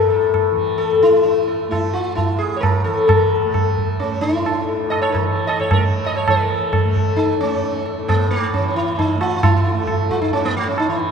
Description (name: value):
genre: indian classical, Hindustani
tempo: 132 BPM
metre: 7/4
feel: straight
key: A major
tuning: A4 = 440 Hz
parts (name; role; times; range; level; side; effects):
- sitar; melody; 0.0-11.0 s; A3 to D#5; -18 LUFS; left 2 dB; none
- tanpura; drone; 0.0-11.1 s; A2 to A3; -28 LUFS; right 1 dB; none
- tabla; percussion; 0.3-10.9 s; none; -20 LUFS; right 2 dB; none
room: wet cathedral reverb, RT60 5.0 s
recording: recorded in a church or concert hall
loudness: -16 LUFS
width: side -6 dB against mid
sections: 0.0-6.3 A section; 6.3-11.1 B section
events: none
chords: none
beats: 0.34 0.80 1.26 1.72 2.17 2.63 | 3.09 3.54 4.00 4.46 4.91 5.37 5.82 | 6.27 6.72 7.18 7.63 8.08 8.53 8.98 | 9.43 9.88 10.33 10.78